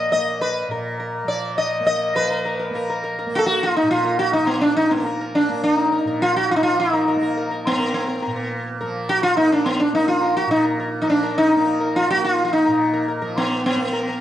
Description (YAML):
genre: indian classical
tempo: 104 BPM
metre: 5/4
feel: straight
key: unclear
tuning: A4 = 440 Hz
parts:
  - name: sitar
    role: melody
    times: 0.0-14.2 s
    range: Cb4 to Eb5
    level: -18 LUFS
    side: equal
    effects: none
  - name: tanpura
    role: drone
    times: 0.0-14.2 s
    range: Bb2 to Bb3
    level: -29 LUFS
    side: right 2 dB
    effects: none
room: moderate recital hall reverb, RT60 1.6 s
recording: dark, warm production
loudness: -18 LUFS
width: side -12 dB against mid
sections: 0.0-2.2 A section; 2.2-14.2 B section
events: speeding up 0.0-14.2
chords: none